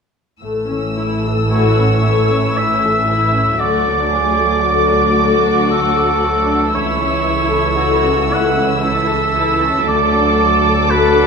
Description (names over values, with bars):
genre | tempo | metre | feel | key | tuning
classical, slow romantic movement for symphony orchestra | 58 BPM | 3/4 | rubato | A major | A4 = 439 Hz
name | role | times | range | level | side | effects
muted studio violin section | melody | 0.4-11.3 s | D6 to E6 | -24 LUFS | equal | none
muted studio viola section | accompaniment | 0.4-11.3 s | E3 to A4 | -20 LUFS | equal | none
concert harp | arpeggios | 0.4-11.3 s | A2 to A4 | -21 LUFS | left 7 dB | none
muted chamber double bass section | bass | 0.4-11.3 s | A1 to D2 | -22 LUFS | right 3 dB | none
muted studio cello section | bass | 0.4-11.3 s | C#2 to A2 | -22 LUFS | right 1 dB | none
muted studio violin section | second line | 1.5-11.3 s | C#4 to A4 | -22 LUFS | left 4 dB | none
warm oboe | second line | 1.5-11.3 s | A4 to F#5 | -17 LUFS | right 3 dB | none
room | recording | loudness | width
wet recital hall reverb, RT60 1.6 s | minimal, uncompressed stereo recording | -12 LUFS | side -5 dB against mid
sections
0.4-11.3 A section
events
none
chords
0.4 A; 3.6 D; 6.7 A/C#; 9.9 D